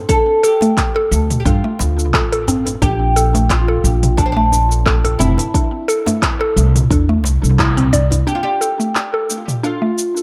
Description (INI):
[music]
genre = organic downtempo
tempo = 88 BPM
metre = 4/4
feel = swing 55% on 16ths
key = D minor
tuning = A4 = 440 Hz
[part]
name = oud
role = melody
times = 0.0-10.2 s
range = C4 to A4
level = -22 LUFS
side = equal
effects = tape echo
[part]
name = mallet-like synth pluck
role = arpeggios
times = 0.1-9.9 s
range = A3 to D5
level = -22 LUFS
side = equal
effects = chorus, phaser, tape echo
[part]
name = electronic kick drum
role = drums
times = 0.1-7.7 s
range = none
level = -21 LUFS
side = equal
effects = none
[part]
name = organic electronic drum kit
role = drums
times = 0.1-10.2 s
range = cabasa, handclaps, hi-hat, toms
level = -23 LUFS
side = equal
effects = none
[part]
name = djembe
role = percussion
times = 0.6-8.2 s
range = none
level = -28 LUFS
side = equal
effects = tape echo
[part]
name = upright bass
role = bass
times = 1.1-8.2 s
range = F1 to G2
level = -18 LUFS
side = equal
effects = none
[sound]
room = moderate spring reverb, RT60 1.4 s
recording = echo-heavy mix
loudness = -15 LUFS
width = mono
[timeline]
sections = 0.0-8.3 A section; 8.3-10.2 B section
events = band accent 7.6-7.9; filter sweep on synth pluck 8.3-10.2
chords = 0.0 Dm; 2.8 Bbmaj7; 5.5 C6; 8.3 Asus4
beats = | 0.09 0.77 1.45 2.14 | 2.82 3.50 4.18 4.86 | 5.54 6.23 6.91 7.59 | 8.27 8.95 9.64